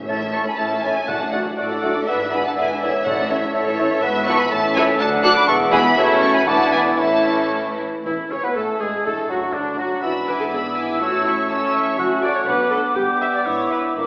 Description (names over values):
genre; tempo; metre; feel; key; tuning
quick classical-period movement for symphony orchestra; 121 BPM; 2/4; rubato; A major; A4 = 438 Hz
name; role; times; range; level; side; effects
muted studio violin section; melody; 0.0-13.9 s; D4 to F#6; -27 LUFS; equal; none
muted studio violin section; second line; 0.0-13.9 s; D4 to C#6; -30 LUFS; equal; none
timpani; percussion; 0.0-3.7, 8.1-9.8 s; A2; -41 LUFS; equal; none
flute section; second line; 0.1-14.1 s; D4 to E6; -27 LUFS; equal; none
mellow clarinet; second line; 0.1-14.1 s; A3 to D5; -32 LUFS; equal; none
warm oboe; second line; 0.1-14.1 s; D4 to A5; -27 LUFS; equal; none
muted studio viola section; accompaniment; 0.1-14.1 s; D3 to E5; -28 LUFS; equal; none
warm bassoon; accompaniment; 0.1-14.1 s; D3 to D4; -28 LUFS; equal; none
muted studio cello section; bass; 0.1-14.1 s; D2 to C#3; -34 LUFS; equal; none
muted studio double bass section; bass; 0.1-14.1 s; E1 to D2; -42 LUFS; equal; none
dark French horn section; sustained chords; 0.3-14.1 s; D3 to D4; -32 LUFS; equal; none
room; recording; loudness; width
wet scoring stage reverb, RT60 1.9 s; heard from further back in the room, AM radio sound; -19 LUFS; mono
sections
0.1-8.1 A section; 8.1-14.1 A section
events
none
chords
0.1 A; 1.1 D/A; 2.1 E7/G#; 3.1 A; 4.0 E/G#; 4.5 A; 5.0 D; 5.5 E; 6.0 F#m7; 6.5 E7(no3); 7.0 A; 9.1 D; 10.0 E7/G#; 11.0 A; 12.0 F#m; 12.5 Bm; 13.0 G; 13.5 E7/G#